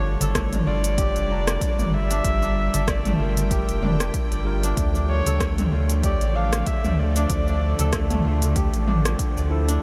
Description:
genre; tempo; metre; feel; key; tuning
organic downtempo; 95 BPM; 4/4; swing 56% on 16ths; D minor; A4 = 439 Hz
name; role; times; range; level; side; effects
dark kamancheh; melody; 0.0-8.2 s; Bb4 to F5; -32 LUFS; equal; tape echo
tine electric piano; accompaniment; 0.0-9.8 s; F3 to Bb5; -35 LUFS; equal; sidechain pumping, tape echo
bowed-like drone; sustained chords; 0.0-9.8 s; D3 to G5; -35 LUFS; equal; built-in reverb, sidechain pumping
kora; arpeggios; 0.0-9.8 s; A3 to D5; -34 LUFS; equal; tape echo
warm sub bass; bass; 0.0-9.8 s; F1 to D2; -26 LUFS; equal; sidechain pumping
organic electronic drum kit; drums; 0.2-9.8 s; hi-hat, rim click, shaker, toms; -30 LUFS; equal; overdrive
darbuka; percussion; 0.2-8.5 s; none; -35 LUFS; equal; none
electronic kick drum; drums; 0.3-9.3 s; none; -29 LUFS; equal; none
room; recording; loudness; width
moderate huge ambient reverb, RT60 7.5 s; dreamy mix soaked in reverb; -22 LUFS; mono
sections
0.0-9.8 A section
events
none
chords
0.0 Gm7; 4.8 Dmadd9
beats
0.35 0.98 1.61 | 2.25 2.88 3.51 4.14 | 4.77 5.40 6.04 6.67 | 7.30 7.93 8.56 9.19 | 9.82

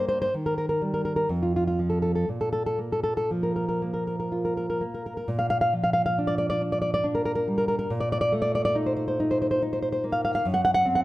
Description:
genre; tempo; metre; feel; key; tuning
romantic piece for solo classical guitar; 58-72 BPM; 3/4; rubato; Bb major; A4 = 440 Hz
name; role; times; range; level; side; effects
nylon-string guitar; solo; 0.0-11.0 s; F2 to F#5; -23 LUFS; equal; none
room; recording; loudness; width
light reverb; close, detailed microphones; -23 LUFS; side -17 dB against mid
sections
0.0-5.3 A section; 5.3-11.0 B section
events
none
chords
0.3 Eb; 1.3 N.C.; 2.3 Bb5; 5.3 Bb; 7.9 Cm13/Bb; 10.5 D7/F# (rootless)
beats
0.32 1.28 | 2.27 3.30 4.31 | 5.29 6.18 7.05 | 7.91 8.76 9.62 | 10.46

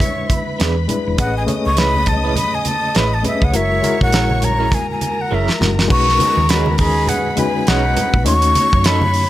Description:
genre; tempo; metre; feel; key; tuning
lush 1970s-style soul; 102 BPM; 4/4; swing 58% on 16ths; B major; A4 = 439 Hz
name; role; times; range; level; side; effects
breathy mellow silver concert flute; melody; 0.0-9.3 s; E5 to C#6; -19 LUFS; left 1 dB; none
warm studio string section; second line; 0.0-9.3 s; A#4 to D#6; -26 LUFS; left 1 dB; none
reed electric piano; accompaniment; 0.0-9.3 s; G#3 to C#5; -22 LUFS; left 4 dB; overdrive, fast tremolo
damped 70s drum kit; drums; 0.0-9.3 s; crash cymbal, hi-hat, kick drum, snare drum; -18 LUFS; right 1 dB; none
congas; percussion; 0.0-9.3 s; none; -26 LUFS; right 3 dB; none
electric guitar through a small old amp; riff; 0.6-9.0 s; F#3 to B4; -26 LUFS; right 7 dB; tremolo
hollow-body short-scale fingered electric bass; bass; 0.6-9.2 s; E1 to F#2; -18 LUFS; equal; none
warm horn section; stabs; 6.2-8.1 s; F#3 to G#4; -25 LUFS; right 2 dB; none
room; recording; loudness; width
small room ambience; none; -14 LUFS; side -14 dB against mid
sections
0.0-5.9 A section; 5.9-9.3 B section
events
flute solo 0.0-5.9; drum fill 5.3-5.9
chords
0.0 E7; 1.2 Amaj9; 3.5 F#9; 5.9 B69; 8.3 D#m7b5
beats
0.01 0.59 | 1.18 1.77 2.36 2.95 | 3.54 4.13 4.72 5.31 | 5.90 6.49 7.08 7.67 | 8.26 8.84

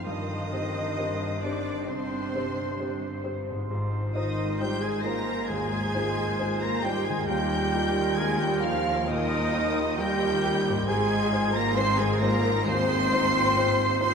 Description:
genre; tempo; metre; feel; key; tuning
cinematic, emotional film score for orchestra; 67 BPM; 4/4; rubato; Ab lydian; A4 = 439 Hz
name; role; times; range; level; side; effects
warm symphonic violin section; melody; 0.0-14.1 s; C6 to C7; -34 LUFS; left 2 dB; none
clear oboe; second line; 0.0-14.1 s; Bb4 to C5; -38 LUFS; left 2 dB; none
mellow flute section; second line; 0.0-14.1 s; C5 to C6; -33 LUFS; right 1 dB; none
rich symphonic violin section; second line; 0.0-14.1 s; C5 to C6; -36 LUFS; right 2 dB; none
felt-muted upright piano; accompaniment; 0.0-14.1 s; Eb2 to C5; -33 LUFS; left 1 dB; none
rich symphonic viola section; accompaniment; 0.0-14.1 s; Eb3 to C5; -33 LUFS; right 2 dB; none
dark French horn section; sustained chords; 0.0-14.1 s; C3 to D4; -31 LUFS; left 1 dB; none
concert harp; arpeggios; 0.0-14.1 s; G2 to C5; -39 LUFS; left 2 dB; none
clear symphonic double bass section; bass; 0.0-14.1 s; G1 to Eb2; -35 LUFS; equal; none
rich symphonic cello section; bass; 0.0-14.1 s; Eb2 to Ab2; -34 LUFS; equal; none
mellow clarinet; second line; 0.1-14.1 s; D4 to F4; -36 LUFS; right 3 dB; none
room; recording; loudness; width
wet cathedral reverb, RT60 6.4 s; in a vast, echoing space; -24 LUFS; side -6 dB against mid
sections
0.0-14.1 A section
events
none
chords
0.1 Cmadd9/G; 3.7 Ab6; 7.3 Ebadd9; 10.9 Ab6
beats
| 0.05 0.96 1.88 2.79 | 3.69 4.59 5.48 6.38 | 7.27 8.17 9.07 9.98 | 10.87 11.77 12.66 13.56

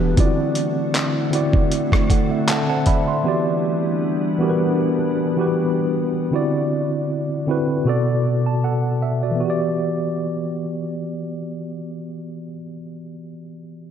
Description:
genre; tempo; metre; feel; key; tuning
contemporary R&B; 78 BPM; 4/4; swing 54% on 16ths; E minor; A4 = 440 Hz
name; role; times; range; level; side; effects
mellow tine electric piano; accompaniment; 0.0-13.9 s; B2 to C6; -20 LUFS; equal; fast stereo tremolo
glassy FM pad; sustained chords; 0.0-6.3 s; D3 to F#5; -25 LUFS; equal; ensemble chorus, built-in reverb
dusty soul sampler-style drum kit; drums; 0.2-3.1 s; handclaps, hi-hat, kick drum, rim click; -19 LUFS; equal; overdrive
room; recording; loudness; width
wet lush hall reverb, RT60 2.5 s; dreamy mix soaked in reverb; -18 LUFS; side -8 dB against mid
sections
0.0-9.4 A section; 9.4-12.5 B section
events
tine electric piano fill 2.1-3.3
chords
0.2 D9; 3.3 Em9; 6.3 D9; 7.9 Bm7; 9.4 Em9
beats
| 0.17 0.94 1.71 2.48 | 3.25 4.02 4.79 5.56 | 6.33 7.10 7.87 8.64 | 9.40 10.17 10.94 11.71

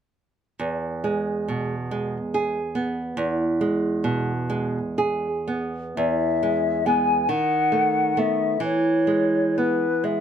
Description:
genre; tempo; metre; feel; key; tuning
romantic duo for flute and classical guitar; 38-48 BPM (dotted quarters); 6/8; rubato; E major; A4 = 440 Hz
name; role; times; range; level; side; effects
nylon-string guitar; accompaniment; 0.6-10.2 s; E2 to G#4; -23 LUFS; right 2 dB; none
mellow hollow silver concert flute; melody; 6.0-10.2 s; B4 to G#5; -22 LUFS; left 5 dB; plate reverb
room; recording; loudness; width
moderate studio ambience, RT60 0.5 s; none; -21 LUFS; side -8 dB against mid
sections
0.6-6.0 A section; 6.0-10.2 B section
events
none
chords
0.6 E; 7.3 B7/D#; 8.6 E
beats
| 0.58 1.91 | 3.17 4.49 | 5.97 7.30 | 8.62 10.04

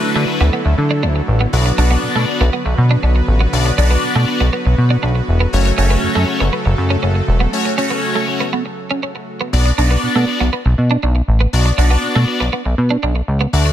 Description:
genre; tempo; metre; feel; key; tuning
pop; 120 BPM; 4/4; straight; B minor; A4 = 438 Hz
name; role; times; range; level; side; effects
big bright polysynth; accompaniment; 0.0-13.7 s; A3 to D5; -20 LUFS; left 2 dB; phaser
soft supersaw; sustained chords; 0.0-9.5 s; C#3 to B4; -22 LUFS; equal; none
chorused synth bass; bass; 0.0-13.7 s; E1 to D3; -14 LUFS; equal; none
twelve-string electric guitar; riff; 0.2-13.7 s; A3 to D4; -22 LUFS; right 4 dB; wide subtle chorus
room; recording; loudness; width
little or no reverb; none; -13 LUFS; side -11 dB against mid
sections
0.0-9.5 A section; 9.5-13.7 A section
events
break 7.5-9.5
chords
0.0 D; 1.5 Bm; 5.5 F#m; 9.5 Bm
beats
0.03 0.53 1.03 | 1.53 2.03 2.53 3.03 | 3.53 4.03 4.53 5.03 | 5.53 6.03 6.53 7.03 | 7.53 8.03 8.53 9.03 | 9.53 10.03 10.53 11.03 | 11.53 12.03 12.53 13.03 | 13.53

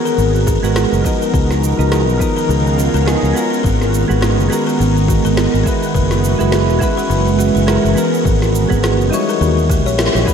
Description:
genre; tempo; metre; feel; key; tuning
sunset chillout; 104 BPM; 4/4; swing 57% on 16ths; G# minor; A4 = 440 Hz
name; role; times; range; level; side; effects
soft electric-piano-like synth keys; accompaniment; 0.0-10.3 s; E#3 to C#5; -19 LUFS; moving between left 1 dB and right 6 dB; chorus, tremolo, auto-pan, analog delay
ethereal airy pad; sustained chords; 0.0-10.3 s; D#3 to A#4; -19 LUFS; equal; ensemble chorus, built-in reverb, phaser
buzzing kalimba; arpeggios; 0.1-10.3 s; E#4 to C#5; -22 LUFS; left 3 dB; analog delay
electronic cabasa and snare drum; drums; 0.1-10.3 s; none; -24 LUFS; equal; none
fretless electric bass; bass; 0.2-10.2 s; E1 to D#2; -16 LUFS; equal; none
electronic kick drum; drums; 0.5-10.3 s; none; -18 LUFS; left 1 dB; none
room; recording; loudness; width
moderate lush hall reverb, RT60 1.6 s, digital ambience; dreamy mix soaked in reverb; -12 LUFS; side -7 dB against mid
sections
0.0-10.3 A section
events
band accent 10.0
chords
0.0 G#m9; 1.3 C#13; 3.6 G#m9; 5.9 F#9sus4; 8.3 G#m9; 9.4 D#7b9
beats
0.18 0.76 | 1.33 1.91 2.49 3.06 | 3.64 4.22 4.79 5.37 | 5.95 6.53 7.10 7.68 | 8.26 8.83 9.41 9.99

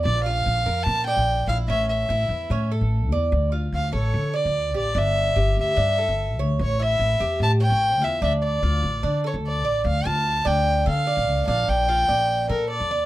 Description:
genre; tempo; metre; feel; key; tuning
latin, Cuban son and guajira; 147 BPM; 4/4; straight; D harmonic minor; A4 = 440 Hz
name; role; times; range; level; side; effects
warm violin; melody; 0.0-13.1 s; Bb4 to A5; -23 LUFS; left 1 dB; none
Cuban tres; arpeggios; 0.0-13.1 s; C#4 to D5; -27 LUFS; right 4 dB; none
upright bass; bass; 0.0-13.1 s; G1 to D3; -23 LUFS; equal; none
room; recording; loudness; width
light reverb; dark, warm production; -20 LUFS; side -15 dB against mid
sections
0.0-9.8 A section; 9.8-13.1 B section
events
none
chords
0.1 Bb; 1.7 A; 3.3 Dm; 5.0 Gsus2; 6.6 A7; 8.2 Dm; 11.5 Bbmaj7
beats
| 0.06 0.47 0.87 1.28 | 1.69 2.10 2.51 2.92 | 3.32 3.73 4.14 4.55 | 4.96 5.36 5.77 6.18 | 6.59 7.00 7.40 7.81 | 8.22 8.63 9.03 9.44 | 9.85 10.26 10.66 11.07 | 11.48 11.88 12.29 12.70

